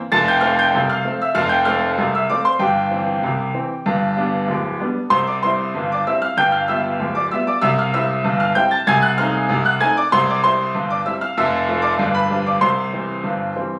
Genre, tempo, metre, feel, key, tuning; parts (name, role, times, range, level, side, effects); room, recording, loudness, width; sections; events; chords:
ragtime piano; 96 BPM; 2/4; straight; C major; A4 = 440 Hz
bright grand piano; solo; 0.1-13.8 s; D1 to A6; -19 LUFS; equal
light reverb; recorded on a phone in the room, studio ambience, compression; -19 LUFS; mono
0.0-13.8 A section
0.1 F; 2.6 C/G; 3.9 G; 5.1 C; 6.4 G7; 7.6 C; 8.9 Cdim7; 10.1 C; 11.4 F; 12.0 G7; 12.6 C